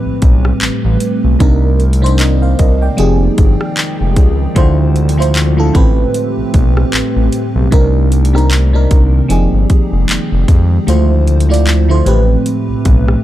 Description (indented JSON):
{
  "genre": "contemporary R&B",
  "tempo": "76 BPM",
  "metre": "4/4",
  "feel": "swing 58% on 16ths",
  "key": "unclear",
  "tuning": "A4 = 440 Hz",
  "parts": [
    { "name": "FM electric piano with soft pad layer", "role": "accompaniment", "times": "0.0-13.2 s", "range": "A2 to G5", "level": "-16 LUFS", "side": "equal", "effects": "chorus, phaser" },
    { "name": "deep dark ambient pad", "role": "sustained chords", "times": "0.0-13.2 s", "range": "C3 to G5", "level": "-20 LUFS", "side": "right 1 dB", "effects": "chorus, built-in reverb" },
    { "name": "impact", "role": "sound effects", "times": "0.0-1.4 s", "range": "none", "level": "barely audible", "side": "none", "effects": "none" },
    { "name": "smooth synth bass", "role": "bass", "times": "0.1-13.2 s", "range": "F1 to F2", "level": "-12 LUFS", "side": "equal", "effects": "none" },
    { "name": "trap drum kit", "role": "drums", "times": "0.2-13.2 s", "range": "handclaps, hi-hat, kick drum, rim click", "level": "-12 LUFS", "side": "equal", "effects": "none" }
  ],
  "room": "little or no reverb",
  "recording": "dark, warm production",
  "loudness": "-9 LUFS",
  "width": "side -14 dB against mid",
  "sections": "0.0-13.2 A section",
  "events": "impact 0.0-1.4; kick muted 10.9-12.5",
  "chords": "0.0 Am9; 1.4 Cm9; 3.0 Fm9; 4.6 Dm9; 5.7 Am9; 7.7 Cm9; 9.3 Fm9; 10.9 Dm9; 12.1 Am9"
}